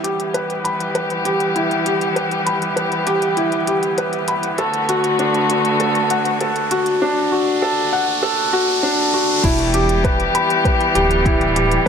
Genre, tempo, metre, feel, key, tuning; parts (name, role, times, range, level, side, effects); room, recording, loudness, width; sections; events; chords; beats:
piano and strings electronica; 99 BPM; 4/4; straight; E minor; A4 = 441 Hz
muted string quartet; sustained chords; 0.0-11.9 s; D3 to G4; -20 LUFS; left 2 dB; sidechain pumping
felt-muted upright piano; riff; 0.0-11.9 s; D4 to B5; -18 LUFS; equal; ping-pong delay
organic electronic drum kit; drums; 0.0-11.8 s; crash cymbal, hi-hat; -28 LUFS; left 3 dB
riser; sound effects; 0.0-9.4 s; -26 LUFS; equal
dark detuned saw bass; bass; 9.4-11.9 s; D1 to E1; -21 LUFS; equal; sidechain pumping
electronic kick drum; drums; 9.4-11.9 s; -19 LUFS; equal
moderate lush hall reverb, RT60 2.1 s; -15 LUFS; side -7 dB against mid
0.0-9.4 A section; 9.4-11.9 B section
build-up 0.0-9.4; riser 0.0-9.4; drop 9.4-11.9
0.0 Em; 4.6 Bm7; 9.4 Em
0.35 0.95 1.56 | 2.17 2.77 3.38 3.98 | 4.59 5.20 5.80 6.41 | 7.01 7.62 8.23 8.83 | 9.44 10.04 10.65 11.26 | 11.86